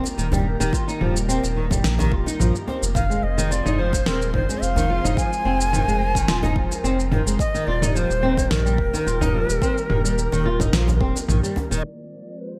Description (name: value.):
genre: organic downtempo.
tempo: 108 BPM.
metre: 4/4.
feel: swing 53% on 16ths.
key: unclear.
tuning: A4 = 440 Hz.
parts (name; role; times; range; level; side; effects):
airy breathy pad; sustained chords; 0.0-12.6 s; Eb3 to C5; -33 LUFS; equal; chorus, phaser, sidechain pumping.
flamenco guitar; arpeggios; 0.0-11.8 s; Eb3 to F4; -28 LUFS; equal; lush chorus, digital delay.
djembe; percussion; 0.0-11.7 s; none; -32 LUFS; equal; none.
deep house drum kit; drums; 0.1-11.8 s; shaker, snare drum, toms; -28 LUFS; equal; low-pass filter on toms, low-pass filter on perc, low-pass filter on snare, low-pass filter on room.
warm sub bass; bass; 0.2-11.8 s; Eb1 to Bb1; -26 LUFS; equal; none.
electronic kick drum; drums; 0.7-11.1 s; none; -28 LUFS; equal; none.
Native American-style cedar flute; melody; 3.0-12.6 s; Bb4 to Ab5; -28 LUFS; equal; digital delay.
room: light reverb, digital ambience.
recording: bright 1980s-style digital production, low-pass filter.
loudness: -21 LUFS.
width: mono.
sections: 0.0-11.8 A section.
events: kick drops out 11.3-11.8.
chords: 0.0 Eb; 3.0 Fm; 7.4 Eb; 11.8 Fm.